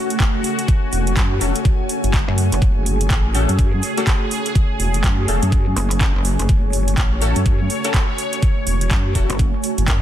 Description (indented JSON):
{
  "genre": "bass house",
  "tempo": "124 BPM",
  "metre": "4/4",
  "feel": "swing 60% on 16ths",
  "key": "F# minor",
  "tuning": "A4 = 445 Hz",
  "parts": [
    { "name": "sweeping resonant pad", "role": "sustained chords", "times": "0.0-10.0 s", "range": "C#3 to C#5", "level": "-28 LUFS", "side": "left 1 dB", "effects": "chorus, sidechain pumping" },
    { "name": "ethereal airy pad", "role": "texture", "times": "0.0-10.0 s", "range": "A3 to G#5", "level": "-26 LUFS", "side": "right 1 dB", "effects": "ensemble chorus, built-in reverb, phaser, sidechain pumping" },
    { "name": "big-room dance drum kit", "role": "drums", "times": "0.1-10.0 s", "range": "handclaps, hi-hat", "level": "-26 LUFS", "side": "right 1 dB", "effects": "studio reverb" },
    { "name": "electronic kick drum", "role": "drums", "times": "0.2-10.0 s", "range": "none", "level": "-17 LUFS", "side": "equal", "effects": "studio reverb" },
    { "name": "vowel-sweep wobble bass", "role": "bass", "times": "0.9-9.9 s", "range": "E1 to F#2", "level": "-20 LUFS", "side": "equal", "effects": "chorus, tube saturation, sidechain pumping" },
    { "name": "orchestra-hit-like synth stab", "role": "stabs", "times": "1.4-9.4 s", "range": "A3 to A4", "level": "-26 LUFS", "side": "left 4 dB", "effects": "built-in reverb, phaser, vintage 12-bit sampler grit, sidechain pumping, digital delay" },
    { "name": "pulsing pluck wobble bass", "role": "bass", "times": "2.3-2.6, 5.8-10.0 s", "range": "F#1 to F#2", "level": "-19 LUFS", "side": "equal", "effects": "chorus, tube saturation, sidechain pumping" }
  ],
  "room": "digital ambience",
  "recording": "dense, heavily limited modern master, lossy compression artefacts",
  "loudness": "-16 LUFS",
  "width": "side -11 dB against mid",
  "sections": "0.0-10.0 A section",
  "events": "none",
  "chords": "0.0 F#m"
}